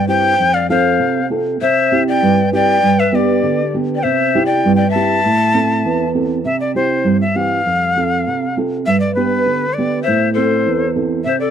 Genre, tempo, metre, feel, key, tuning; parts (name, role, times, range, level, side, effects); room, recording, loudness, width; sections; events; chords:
andean folk, Andean ensemble; 99 BPM; 2/4; straight; A4 = 442 Hz
breathy bright quena; melody; 0.0-11.5 s; B4 to A5; -17 LUFS; equal
breathy large pan pipes; second line; 0.0-6.1, 10.0-11.5 s; G4 to E5; -19 LUFS; left 12 dB
nylon-string guitar; accompaniment; 0.0-11.5 s; E2 to A4; -16 LUFS; right 3 dB
little or no reverb; dry, close 1970s-style studio recording; -13 LUFS; side -8 dB against mid
0.0-6.4 A section; 6.4-11.5 B section
0.4 F; 1.6 C; 2.8 G; 4.0 C; 5.2 Am; 6.4 C; 7.7 F; 8.9 G; 10.1 Am